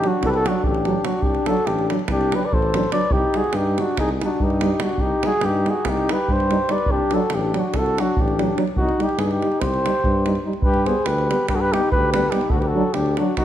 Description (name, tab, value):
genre	balkan folk, Balkan brass band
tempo	287 BPM (eighths)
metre	9/8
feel	straight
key	C hungarian minor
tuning	A4 = 441 Hz
part	dark cornet	melody	0.0-13.4 s	F#4 to D5	-22 LUFS	equal	none
part	mellow flugelhorn	second line	0.0-13.4 s	D4 to B4	-26 LUFS	left 3 dB	none
part	warm French horn	accompaniment	0.0-13.3 s	B3 to Eb4	-30 LUFS	left 5 dB	none
part	warm euphonium	accompaniment	0.0-13.3 s	F#3 to G3	-27 LUFS	right 5 dB	none
part	davul	percussion	0.0-13.4 s	none	-25 LUFS	right 1 dB	none
part	mellow tuba	bass	0.2-13.4 s	A1 to G2	-25 LUFS	equal	none
room	moderate recital hall reverb, RT60 1.6 s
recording	dark, warm production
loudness	-18 LUFS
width	side -11 dB against mid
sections	0.0-10.6 A section; 10.6-13.4 B section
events	none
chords	0.0 D; 3.1 Cm; 6.9 D; 8.8 Cm; 10.6 G; 12.5 D